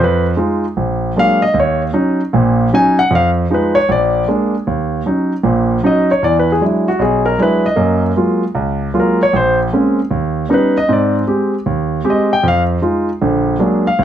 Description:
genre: solo jazz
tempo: 154 BPM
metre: 4/4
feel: swing 64% on 8ths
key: Eb minor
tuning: A4 = 440 Hz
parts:
  - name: warm concert grand piano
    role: solo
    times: 0.0-14.0 s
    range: Bb1 to Ab5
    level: -12 LUFS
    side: equal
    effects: none
room: light reverb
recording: none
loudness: -12 LUFS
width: side -10 dB against mid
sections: 0.0-4.7 A section; 4.7-14.0 A section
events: grand piano solo 0.0-4.7, 4.7-14.0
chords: 0.0 Fm7b5; 0.8 Bb7b13; 1.5 Ebm7; 3.1 Fm7b5; 3.9 Bb7; 4.7 Ebm7; 6.2 E9; 7.8 Gbmaj9; 9.3 Bbm9; 10.1 Ebaug7; 10.9 Abmaj7; 12.4 Fm7; 13.2 Bb7b13

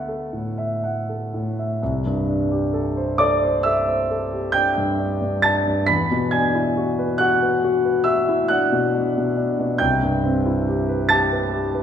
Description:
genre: classical, impressionist solo piano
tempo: 39-47 BPM (dotted quarters)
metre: 9/8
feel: rubato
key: C major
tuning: A4 = 440 Hz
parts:
  - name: warm concert grand piano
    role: solo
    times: 0.0-11.8 s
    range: C2 to B6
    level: -18 LUFS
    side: equal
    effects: none
room: wet recital hall reverb, RT60 1.5 s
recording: recorded in a church or concert hall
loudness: -18 LUFS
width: side -8 dB against mid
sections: 0.0-1.8 A section; 1.8-11.8 B section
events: none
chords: 0.0 Dadd9; 1.8 C69; 5.9 E9; 9.8 Cmaj7

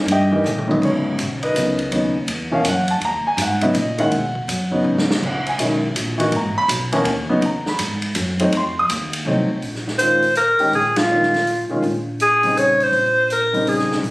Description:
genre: modal jazz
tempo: 163 BPM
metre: 3/4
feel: swing 64% on 8ths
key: G# minor, Bb dorian from 9.6 s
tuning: A4 = 436 Hz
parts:
  - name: warm grand piano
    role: accompaniment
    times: 0.0-14.0 s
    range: Ab2 to Eb6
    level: -19 LUFS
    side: equal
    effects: none
  - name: upright bass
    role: bass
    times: 0.0-14.1 s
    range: G#1 to B2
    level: -25 LUFS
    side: equal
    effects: none
  - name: swinging big-band drum kit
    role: drums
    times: 0.1-14.1 s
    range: crash cymbal, hi-hat, kick drum, ride cymbal, snare drum, toms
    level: -25 LUFS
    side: equal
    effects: none
  - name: breathy alto saxophone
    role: melody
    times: 10.0-14.0 s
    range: F4 to Db5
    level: -15 LUFS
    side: equal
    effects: none
room: moderate studio reverb, RT60 0.6 s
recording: recorded on a phone in the room, studio reverb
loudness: -16 LUFS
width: side -20 dB against mid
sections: 0.8-9.6 A section; 9.6-14.1 B section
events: drum fill 0.4-0.8, 4.9-5.2; band accent 10.9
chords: 0.0 Eb7b9; 0.8 G#m9; 5.2 C#m9; 8.5 F7b9; 9.6 Bbm9

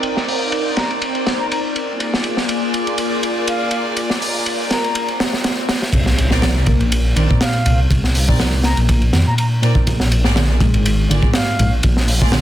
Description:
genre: breakbeat, breaks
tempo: 122 BPM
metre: 4/4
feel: swing 54% on 16ths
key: C minor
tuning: A4 = 440 Hz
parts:
  - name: phased analog pad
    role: sustained chords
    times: 0.0-5.9 s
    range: Bb3 to D5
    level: -23 LUFS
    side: left 2 dB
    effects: phaser, chorus, vintage 12-bit sampler grit, sidechain pumping
  - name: warm chamber string section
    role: stabs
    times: 0.0-12.3 s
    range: Bb3 to D5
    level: -24 LUFS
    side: right 1 dB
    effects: digital delay
  - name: crunchy breakbeat drum kit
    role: drums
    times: 0.0-12.4 s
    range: crash cymbal, hi-hat, kick drum, ride cymbal, snare drum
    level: -18 LUFS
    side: equal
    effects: high-pass filter on kick, high-pass filter on cymbals, high-pass filter on hats, high-pass filter on snare, high-pass filter on room
  - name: silver concert flute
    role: melody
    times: 0.8-11.7 s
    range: F5 to Bb5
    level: -26 LUFS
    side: equal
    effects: AM radio sound, digital delay
  - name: swell and impact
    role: sound effects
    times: 5.1-7.9 s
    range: none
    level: -27 LUFS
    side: equal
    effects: none
  - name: reed electric piano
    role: riff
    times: 5.9-12.4 s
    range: Ab2 to Bb3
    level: -20 LUFS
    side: equal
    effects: vintage 12-bit sampler grit, digital delay
  - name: dark detuned saw bass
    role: bass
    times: 5.9-12.4 s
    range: Ab1 to F2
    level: -16 LUFS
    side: equal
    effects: tube saturation
room: light reverb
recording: dense, heavily limited modern master, low-pass filter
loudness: -14 LUFS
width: side -12 dB against mid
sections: 0.0-5.9 A section; 5.9-12.4 B section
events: swell 5.1-5.9; drop 5.9-12.4; impact 5.9-7.9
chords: 0.0 Cm9; 2.0 Bb7; 5.9 Cm7; 9.9 Bb7

